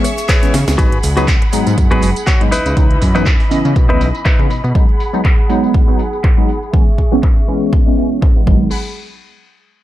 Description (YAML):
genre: filtered disco house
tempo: 121 BPM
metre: 4/4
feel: swing 55% on 16ths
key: G# minor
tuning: A4 = 445 Hz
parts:
  - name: funky polysynth comp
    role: accompaniment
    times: 0.0-8.7 s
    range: E3 to D#5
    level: -18 LUFS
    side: equal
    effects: chorus, phaser, sidechain pumping, low-pass filter
  - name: rich studio string section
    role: sustained chords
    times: 0.0-8.7 s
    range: E3 to C#6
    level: -24 LUFS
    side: right 1 dB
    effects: vintage 12-bit sampler grit, sidechain pumping, low-pass filter
  - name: direct-recorded clean electric guitar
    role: riff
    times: 0.0-4.7 s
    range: D#4 to C#5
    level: -19 LUFS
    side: left 1 dB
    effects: vintage 12-bit sampler grit, sidechain pumping, low-pass filter
  - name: house drum kit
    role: drums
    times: 0.0-8.6 s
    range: crash cymbal, handclaps, hi-hat, ride cymbal, snare drum, tambourine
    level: -23 LUFS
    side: equal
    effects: low-pass filter on hats, studio reverb, low-pass filter on perc, low-pass filter on cymbals, low-pass filter on snare
  - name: maracas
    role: percussion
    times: 0.2-8.7 s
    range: none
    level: -37 LUFS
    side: left 2 dB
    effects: none
  - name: electronic kick drum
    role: drums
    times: 0.3-8.6 s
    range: none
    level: -13 LUFS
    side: equal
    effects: studio reverb
  - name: fat analog bass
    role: bass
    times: 0.5-4.7, 8.5-8.7 s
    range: F#1 to C#3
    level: -17 LUFS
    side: equal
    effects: sidechain pumping, low-pass filter
room: little or no reverb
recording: none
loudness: -11 LUFS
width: side -14 dB against mid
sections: 0.8-8.7 A section; 8.7-9.8 B section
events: drum fill 0.5; band accent 0.7; filter sweep on drum 0.8-8.7; filter sweep 0.8-8.7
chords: 0.0 E6; 0.8 G#m7; 2.5 C#m9; 4.8 G#m7; 6.7 E6; 8.5 G#m7; 8.7 N.C.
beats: 0.29 | 0.79 1.28 1.78 2.27 | 2.77 3.26 3.76 4.26 | 4.75 5.25 5.74 6.24 | 6.74 7.23 7.73 8.22